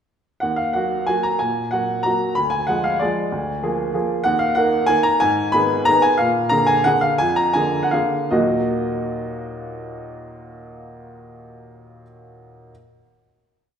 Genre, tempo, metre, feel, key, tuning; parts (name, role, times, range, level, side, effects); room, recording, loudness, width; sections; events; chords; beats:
classical, piano waltz; 148-202 BPM; 3/4; rubato; Eb minor; A4 = 440 Hz
clear upright piano; solo; 0.4-12.7 s; D2 to Cb6; -18 LUFS; equal
moderate concert hall reverb, RT60 1.8 s; minimal, uncompressed stereo recording; -17 LUFS; side -8 dB against mid
0.4-8.3 A section; 8.3-10.6 final chord
slowing down 5.7-8.3
0.4 Ebm; 2.4 Ddim; 3.3 Bb7/D; 4.3 Ebm; 5.2 Abm; 6.2 Bb7; 8.3 Ebm
| 0.42 0.75 1.08 | 1.41 1.73 2.06 | 2.38 2.69 3.02 | 3.32 3.63 3.94 | 4.26 4.57 4.90 | 5.22 5.55 5.88 | 6.20 6.52 6.86 | 7.20 7.55 7.93 | 8.33 8.69 9.07 | 9.44 9.81 10.20